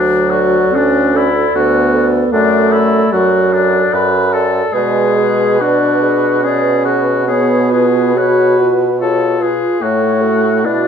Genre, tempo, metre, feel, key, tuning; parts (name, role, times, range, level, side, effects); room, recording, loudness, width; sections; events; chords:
classical, slow romantic movement for wind quintet; 72 BPM; 3/4; uneven beats, rubato; A4 = 441 Hz
warm oboe; second line; 0.0-10.9 s; D4 to B4; -18 LUFS; left 2 dB
mellow French horn; accompaniment; 0.0-10.9 s; F#3 to F#4; -15 LUFS; right 1 dB
warm bassoon; bass; 0.0-10.9 s; D2 to B2; -17 LUFS; right 3 dB
concert flute; melody; 0.3-10.9 s; A4 to D5; -19 LUFS; left 10 dB
mellow clarinet; accompaniment; 0.3-10.9 s; E#4 to B4; -21 LUFS; right 10 dB
light reverb; minimal, uncompressed stereo recording; -10 LUFS; side -7 dB against mid
0.0-10.9 A section
0.0 D; 2.3 D/F#; 4.7 G#dim/B; 7.3 C#7/B; 9.8 F#m/A